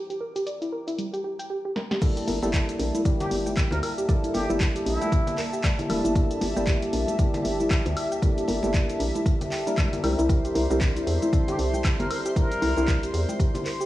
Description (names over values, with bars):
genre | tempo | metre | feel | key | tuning
deep house | 116 BPM | 4/4 | swing 59% on 16ths | G dorian | A4 = 440 Hz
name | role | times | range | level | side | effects
dark analog pad | sustained chords | 0.0-13.9 s | Bb3 to C6 | -33 LUFS | left 1 dB | chorus, sidechain pumping
analog string pad | texture | 0.0-1.5, 10.3-13.9 s | C6 to D6 | -44 LUFS | left 2 dB | ensemble chorus, sidechain pumping
soft round pluck | arpeggios | 0.1-13.9 s | G3 to G5 | -31 LUFS | equal | chorus, sidechain pumping, analog delay
punchy analog drum machine | drums | 0.1-13.9 s | crash cymbal, handclaps, hi-hat, shaker, snare drum, woodblock | -33 LUFS | equal | low-pass filter on hats, low-pass filter on perc, low-pass filter on snare, low-pass filter on cymbals
percussive organ stab | stabs | 2.0-13.8 s | G3 to Bb4 | -29 LUFS | equal | analog chorus, sidechain pumping, analog delay
electronic kick drum | drums | 2.0-13.5 s | none | -23 LUFS | equal | none
hollow knocking FM bass | bass | 2.3-13.3 s | E1 to E2 | -28 LUFS | equal | transformer saturation, sidechain pumping
congas | percussion | 2.3-13.6 s | none | -35 LUFS | left 2 dB | none
trumpet with plunger mute | melody | 3.2-5.4, 11.5-13.1 s | E4 to Bb4 | -33 LUFS | equal | analog delay
room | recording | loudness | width
digital ambience | dry, gritty hardware recording, cassette tape, studio reverb | -22 LUFS | side -15 dB against mid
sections
0.0-2.0 A section; 2.0-13.9 B section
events
drum fill 1.8; drop 2.0-13.9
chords
0.0 C7; 2.0 Gm69; 10.0 C7